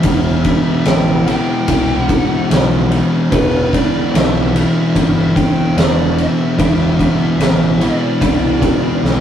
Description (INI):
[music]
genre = stoner and doom metal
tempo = 73 BPM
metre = 4/4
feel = straight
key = E minor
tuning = A4 = 438 Hz
[part]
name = fuzz lead guitar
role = melody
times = 0.0-9.0 s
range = B4 to G5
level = -24 LUFS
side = right 1 dB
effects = distortion
[part]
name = thick fuzz guitar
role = riff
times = 0.0-9.2 s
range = E2 to E3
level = -19 LUFS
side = left 5 dB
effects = distortion
[part]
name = thick fuzz guitar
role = riff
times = 0.0-9.2 s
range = E2 to E3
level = -17 LUFS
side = right 2 dB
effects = distortion
[part]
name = growling picked electric bass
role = bass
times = 0.0-9.2 s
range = E1 to C2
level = -20 LUFS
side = equal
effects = overdrive
[part]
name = oversized low-tuned drum kit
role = drums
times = 0.0-9.2 s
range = kick drum, ride cymbal, snare drum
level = -16 LUFS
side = equal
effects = none
[sound]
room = light reverb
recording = rough rehearsal-room recording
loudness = -12 LUFS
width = side -9 dB against mid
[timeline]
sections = 0.0-9.2 A section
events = drum fill 9.0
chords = 0.0 Em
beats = | 0.04 0.86 1.68 2.50 | 3.31 4.13 4.95 5.77 | 6.58 7.40 8.21 9.03